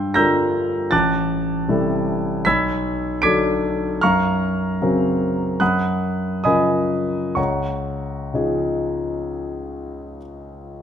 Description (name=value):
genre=classical, impressionist solo piano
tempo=62-80 BPM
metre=4/4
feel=rubato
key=Db mixolydian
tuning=A4 = 441 Hz
part: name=warm concert grand piano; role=solo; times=0.0-10.8 s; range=A1 to D7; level=-18 LUFS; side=equal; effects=none
room=moderate recital hall reverb, RT60 1.4 s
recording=none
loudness=-18 LUFS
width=side -8 dB against mid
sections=0.0-10.8 A section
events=none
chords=0.0 Gm7; 0.9 Am7; 2.5 Cbm7; 4.0 Gbmaj7#11; 5.6 Gbmaj7; 7.4 Dbadd9